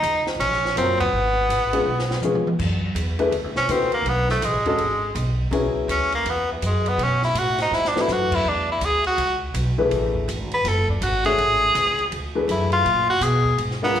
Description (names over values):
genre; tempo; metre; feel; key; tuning
modal jazz; 164 BPM; 4/4; swing 63% on 8ths; F# minor; A4 = 440 Hz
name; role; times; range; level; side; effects
edgy tenor saxophone; melody; 0.0-14.0 s; E3 to B4; -20 LUFS; equal; slapback echo
upright bass; bass; 0.0-14.0 s; Gb1 to B2; -25 LUFS; right 1 dB; none
compact cocktail drum kit; drums; 0.0-14.0 s; crash cymbal, hi-hat, kick drum, ride cymbal, snare drum, toms; -30 LUFS; right 1 dB; none
warm baby grand piano; accompaniment; 0.8-14.0 s; E3 to E5; -24 LUFS; left 3 dB; slapback echo
room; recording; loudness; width
light reverb, small room ambience; live gig heard through the venue's PA, club reverb; -19 LUFS; side -10 dB against mid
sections
0.0-2.6 A section; 2.6-14.0 B section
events
band accent 0.9; drum fill 1.9-2.6, 7.7-8.1; tenor saxophone solo 2.6-14.0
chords
0.0 Eb7sus2; 1.1 Db7; 2.6 F#9sus4; 8.5 E9sus4; 12.8 A#7b9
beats
0.04 0.40 0.77 | 1.13 1.50 1.86 2.23 | 2.60 2.96 3.33 3.70 | 4.06 4.43 4.79 5.16 | 5.53 5.89 6.26 6.63 | 6.99 7.36 7.72 8.09 | 8.46 8.82 9.19 9.55 | 9.92 10.29 10.65 11.02 | 11.38 11.75 12.11 12.48 | 12.85 13.21 13.58 13.95